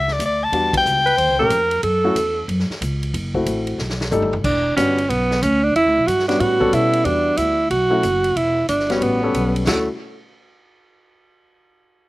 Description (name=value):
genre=jazz, small-group swing and bop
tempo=184 BPM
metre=4/4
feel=swing 64% on 8ths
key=D major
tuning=A4 = 440 Hz
part: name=breathy soprano saxophone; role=melody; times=0.0-1.7 s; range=D5 to A5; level=-18 LUFS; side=left 2 dB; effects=slapback echo
part: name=upright bass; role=bass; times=0.0-9.9 s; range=E1 to B2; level=-24 LUFS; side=equal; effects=none
part: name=vintage drum kit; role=drums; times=0.1-9.8 s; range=crash cymbal, hi-hat, kick drum, ride cymbal, snare drum, toms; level=-29 LUFS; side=equal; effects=none
part: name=dark baby grand piano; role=accompaniment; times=0.5-9.9 s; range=G3 to A4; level=-22 LUFS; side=left 2 dB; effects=none
part: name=clear alto saxophone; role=second line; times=1.1-9.9 s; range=A3 to C5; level=-18 LUFS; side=right 2 dB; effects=none
room=little or no reverb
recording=recorded outdoors, with no room sound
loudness=-16 LUFS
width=side -18 dB against mid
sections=0.0-4.4 A section; 4.4-9.7 B section; 9.7-11.0 C section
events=band accent 0.7; drum fill 3.8-4.4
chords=0.0 N.C.; 0.5 Em9; 1.2 Eb7#11; 1.8 A6; 3.1 F#m7b5; 3.8 B7b13; 4.4 Em9; 5.1 Bmadd9; 5.8 Em9; 6.4 A13; 7.1 Em9; 7.7 B9sus4; 8.4 Emadd9; 9.0 A13; 9.7 Dmaj9